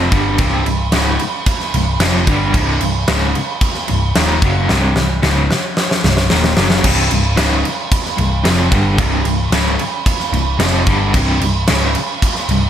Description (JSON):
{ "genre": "hard rock", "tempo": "112 BPM", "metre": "4/4", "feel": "straight", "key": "C minor", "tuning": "A4 = 441 Hz", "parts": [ { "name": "cranked stack guitar", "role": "riff", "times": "0.0-12.7 s", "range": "C2 to G3", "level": "-17 LUFS", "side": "equal", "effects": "overdrive, tremolo" }, { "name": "hollow-body short-scale picked electric bass", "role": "bass", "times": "0.0-12.7 s", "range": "C1 to G1", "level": "-18 LUFS", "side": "equal", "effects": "none" }, { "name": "big rock drum kit", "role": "drums", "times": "0.1-12.6 s", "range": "crash cymbal, kick drum, snare drum", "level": "-16 LUFS", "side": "equal", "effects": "none" } ], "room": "small room ambience", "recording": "none", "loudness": "-13 LUFS", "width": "side -10 dB against mid", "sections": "0.0-6.8 A section; 6.8-12.7 A section", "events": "drum fill 4.7-6.8", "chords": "0.0 Cm; 6.8 C5" }